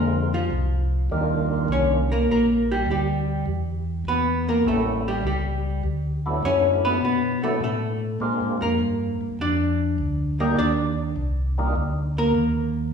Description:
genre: soul jazz organ trio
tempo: 101 BPM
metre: 4/4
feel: swing 68% on 8ths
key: unclear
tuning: A4 = 440 Hz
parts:
  - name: percussive tonewheel organ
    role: melody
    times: 0.0-11.8 s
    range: D3 to G4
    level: -27 LUFS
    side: right 1 dB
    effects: slow rotary speaker, overdrive, chorus vibrato
  - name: archtop guitar, miked and amplified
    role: accompaniment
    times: 0.0-12.9 s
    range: F3 to D5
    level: -23 LUFS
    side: equal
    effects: none
  - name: mellow tonewheel organ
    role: bass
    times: 0.0-12.9 s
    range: A1 to B2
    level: -25 LUFS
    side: equal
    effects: slow rotary speaker
room: wet recital hall reverb, RT60 1.5 s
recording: recorded in a church or concert hall, small room reverb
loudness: -21 LUFS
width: side -6 dB against mid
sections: 0.0-12.9 A section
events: hollow-body jazz guitar solo 0.0-12.9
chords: 0.0 Bb9; 1.1 Ebmaj9; 3.5 E5; 4.7 A7; 5.8 D69; 8.2 Bb9; 10.6 Ebmaj7(no3)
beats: 0.51 | 1.10 1.70 2.29 2.88 | 3.47 4.07 4.66 5.25 | 5.84 6.44 7.03 7.62 | 8.21 8.80 9.40 9.99 | 10.58 11.17 11.76 12.35

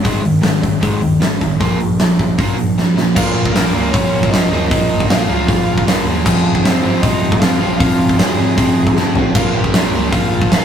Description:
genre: punk rock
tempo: 155 BPM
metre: 4/4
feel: straight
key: unclear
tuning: A4 = 440 Hz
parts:
  - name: overdriven electric guitar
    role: riff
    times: 0.0-10.6 s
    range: F2 to Bb3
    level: -16 LUFS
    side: right 1 dB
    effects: none
  - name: big rock drum kit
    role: drums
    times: 0.0-10.6 s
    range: crash cymbal, hi-hat, kick drum, snare drum, toms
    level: -15 LUFS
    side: equal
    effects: none
  - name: overdriven picked electric bass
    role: bass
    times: 0.1-10.6 s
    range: F1 to Bb2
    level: -24 LUFS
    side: equal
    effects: none
  - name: bluesy overdriven lead guitar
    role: melody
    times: 3.2-10.6 s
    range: Bb3 to Ab5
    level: -22 LUFS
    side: equal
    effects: distortion
room: light reverb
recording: rough rehearsal-room recording, tube saturation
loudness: -12 LUFS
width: side -8 dB against mid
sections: 0.0-3.2 A section; 3.2-10.6 B section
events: drum fill 2.8-3.2, 9.0-9.4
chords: 0.0 Ab5; 1.6 Bb5; 3.2 Bbm; 6.3 Fm; 9.4 Bb5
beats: | 0.04 0.43 0.82 1.21 | 1.60 1.99 2.38 2.76 | 3.15 3.54 3.93 4.32 | 4.70 5.09 5.48 5.86 | 6.25 6.64 7.03 7.41 | 7.80 8.19 8.58 8.96 | 9.35 9.74 10.12 10.51

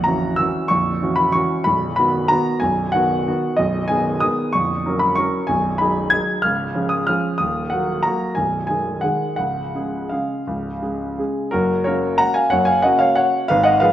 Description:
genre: classical, piano waltz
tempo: 161-197 BPM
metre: 3/4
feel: rubato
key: B major, F# major from 3.6 s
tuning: A4 = 440 Hz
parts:
  - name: warm grand piano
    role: solo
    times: 0.0-13.9 s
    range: A#0 to G#6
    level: -17 LUFS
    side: equal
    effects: none
room: moderate scoring stage reverb, RT60 2.0 s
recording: none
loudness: -17 LUFS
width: side -12 dB against mid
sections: 0.0-11.5 A section; 11.5-13.9 B section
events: none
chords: 0.0 F#7/A#; 1.7 B; 3.6 G#m/B; 4.5 F#/A#; 5.5 G#m7/B; 6.4 C#; 7.4 D#m; 8.4 G#m/B; 9.4 C#; 11.5 F#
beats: 0.06 0.39 | 0.71 1.03 1.35 | 1.67 1.99 2.31 | 2.62 2.94 3.27 | 3.58 3.90 4.23 | 4.54 4.85 5.17 | 5.49 5.80 6.12 | 6.44 6.76 7.09 | 7.40 7.72 8.05 | 8.37 8.69 9.04 | 9.39 9.75 10.12 | 10.48 10.82 11.19 | 11.54 11.86 12.20 | 12.52 12.84 13.18 | 13.50 13.82

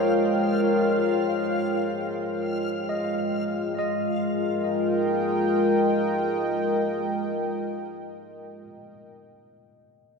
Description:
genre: ambient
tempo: free time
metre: none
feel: none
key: unclear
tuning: A4 = 439 Hz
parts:
  - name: warm analog pad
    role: sustained chords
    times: 0.0-9.1 s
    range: Ab3 to G5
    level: -24 LUFS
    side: left 1 dB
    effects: chorus
  - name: barky tine electric piano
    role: arpeggios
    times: 0.0-10.2 s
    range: Bb4 to F5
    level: -31 LUFS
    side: left 1 dB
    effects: wide subtle chorus, ping-pong delay
  - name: backwards swelling texture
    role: texture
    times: 0.0-3.8 s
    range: F4 to F5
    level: -34 LUFS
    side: left 1 dB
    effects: built-in reverb
room: wet plate reverb, RT60 2.8 s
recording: dreamy mix soaked in reverb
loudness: -22 LUFS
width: side -4 dB against mid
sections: 0.0-3.8 A section; 3.8-8.3 B section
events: none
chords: 0.0 Eb7/Ab; 3.8 Ab5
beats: free time

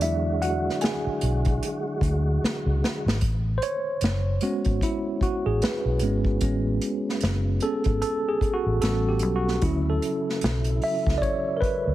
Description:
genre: R&B, neo-soul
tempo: 75 BPM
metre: 4/4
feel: swing 60% on 16ths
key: A major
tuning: A4 = 439 Hz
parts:
  - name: mellow tine electric piano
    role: accompaniment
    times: 0.0-11.9 s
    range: F#3 to G#5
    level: -26 LUFS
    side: right 1 dB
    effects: fast stereo tremolo
  - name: tonewheel organ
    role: sustained chords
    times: 0.0-3.2, 9.6-11.9 s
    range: C#3 to F#4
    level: -34 LUFS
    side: left 1 dB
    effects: slow rotary speaker, overdrive, chorus vibrato
  - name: vintage muted fingered electric bass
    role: bass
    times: 0.0-11.9 s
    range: F#1 to E2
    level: -25 LUFS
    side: equal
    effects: none
  - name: unplugged drum kit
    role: drums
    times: 0.0-11.8 s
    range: hi-hat, kick drum, snare drum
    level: -28 LUFS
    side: equal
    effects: none
room: small room ambience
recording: heavily compressed radio sound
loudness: -22 LUFS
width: side -14 dB against mid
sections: 0.0-3.2 A section; 3.2-11.9 B section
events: tine electric piano solo 0.0-3.2, 3.2-11.9; drum fill 2.4-3.2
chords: 0.0 E9; 3.2 Amaj9; 8.8 A13; 9.6 Dmaj9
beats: | 0.02 0.82 1.62 2.42 | 3.22 4.02 4.82 5.62 | 6.42 7.22 8.02 8.82 | 9.62 10.42 11.22

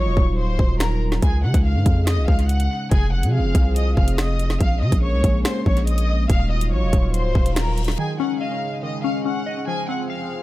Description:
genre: hip hop, drill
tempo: 142 BPM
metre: 4/4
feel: half-time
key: unclear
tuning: A4 = 440 Hz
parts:
  - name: clear studio violin section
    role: melody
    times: 0.0-10.4 s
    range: Ab4 to Gb6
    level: -28 LUFS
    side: left 1 dB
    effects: low-pass filter, tape echo
  - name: dark analog pad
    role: sustained chords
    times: 0.0-10.4 s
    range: Db3 to Ab4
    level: -28 LUFS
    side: equal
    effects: chorus
  - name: long sustained 808-style bass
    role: bass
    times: 0.0-8.0 s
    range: Db1 to Db3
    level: -20 LUFS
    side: equal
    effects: none
  - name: drill drum kit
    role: drums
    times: 0.2-8.0 s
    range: finger snaps, hi-hat, kick drum, snare drum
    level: -20 LUFS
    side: equal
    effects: none
  - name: reverse cymbal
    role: sound effects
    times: 7.4-8.0 s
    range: none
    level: -38 LUFS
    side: left 6 dB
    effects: none
  - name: glassy wavetable pluck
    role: accompaniment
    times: 8.0-10.4 s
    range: Eb3 to F5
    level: -25 LUFS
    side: left 5 dB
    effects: chorus, low-pass filter, tape echo
room: digital ambience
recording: echo-heavy mix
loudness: -18 LUFS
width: side -16 dB against mid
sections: 0.0-8.0 A section; 8.0-10.4 B section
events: break 0.0-2.9; reverse cymbal 7.4-8.0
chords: 0.0 Ebmadd9; 1.2 Dbsus2; 2.9 Fm; 4.6 Bbm7; 6.3 Ebmadd9; 8.0 Dbsus2; 9.7 Fm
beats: 0.38 0.80 | 1.23 1.65 2.07 2.49 | 2.92 3.34 3.76 4.18 | 4.61 5.03 5.45 5.87 | 6.30 6.72 7.14 7.56 | 7.99 8.41 8.83 9.25 | 9.68 10.10

